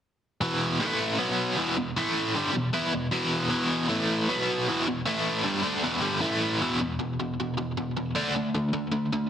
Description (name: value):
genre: rock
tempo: 155 BPM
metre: 4/4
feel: straight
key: unclear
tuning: A4 = 440 Hz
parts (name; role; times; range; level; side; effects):
- biting overdriven guitar; solo; 0.4-9.3 s; E2 to E4; -24 LUFS; equal; tremolo, slapback echo
room: moderate large studio reverb, RT60 1.4 s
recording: dense, heavily limited modern master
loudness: -25 LUFS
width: side -9 dB against mid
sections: 0.4-6.6 A section; 6.6-9.3 B section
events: none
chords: 0.4 E5; 0.8 A5; 1.2 B5; 1.6 E5; 2.0 A5; 2.3 E5; 3.9 A5; 4.3 B5; 4.7 E5; 5.1 A5; 5.4 E5; 6.2 A5; 6.6 E5; 8.2 D5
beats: | 0.41 0.80 1.19 1.57 | 1.96 2.35 2.74 3.12 | 3.51 3.90 4.29 4.67 | 5.06 5.45 5.83 6.22 | 6.61 6.99 7.38 7.77 | 8.15 8.54 8.93